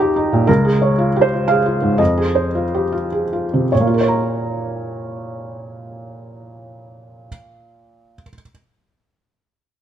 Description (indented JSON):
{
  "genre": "classical",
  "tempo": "97-123 BPM",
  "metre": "3/4",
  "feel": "rubato",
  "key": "Bb dorian",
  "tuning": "A4 = 438 Hz",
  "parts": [
    { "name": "felt-muted upright piano", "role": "accompaniment", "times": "0.0-8.5 s", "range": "Db2 to Bb5", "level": "-16 LUFS", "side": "right 1 dB", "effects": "none" }
  ],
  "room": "light reverb",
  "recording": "close, detailed microphones",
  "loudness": "-15 LUFS",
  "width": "side -10 dB against mid",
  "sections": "0.0-3.7 A section; 3.7-7.3 B section",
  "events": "slowing down 0.0-3.7",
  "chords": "0.5 Db; 2.0 Fm7; 3.7 Bbm"
}